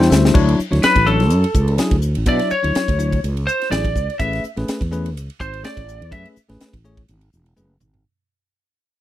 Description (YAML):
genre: electric jazz fusion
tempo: 125 BPM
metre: 4/4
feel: swing 54% on 16ths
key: D lydian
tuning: A4 = 440 Hz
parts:
  - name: lightly driven lead guitar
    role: melody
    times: 0.0-6.3 s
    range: A4 to E5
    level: -20 LUFS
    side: left 1 dB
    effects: slapback echo
  - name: bell-like tine electric piano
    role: accompaniment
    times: 0.0-8.0 s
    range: F#3 to E5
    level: -21 LUFS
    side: left 3 dB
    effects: auto-pan
  - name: fretless electric bass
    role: bass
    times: 0.0-8.0 s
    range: E1 to B2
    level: -19 LUFS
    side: equal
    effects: none
  - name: crisp fusion drum kit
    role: drums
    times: 0.0-8.0 s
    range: crash cymbal, hi-hat, kick drum, ride cymbal, snare drum, toms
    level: -20 LUFS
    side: equal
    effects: none
room: little or no reverb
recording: dry, close 1970s-style studio recording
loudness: -15 LUFS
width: side -13 dB against mid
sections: 0.3-8.0 A section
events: tine electric piano fill 0.0-0.3; drum fill 0.0-0.3, 7.6-8.0; fade-out 0.3-8.0; lead electric guitar solo 0.3-8.0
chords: 0.3 Dmaj9; 4.2 Amaj9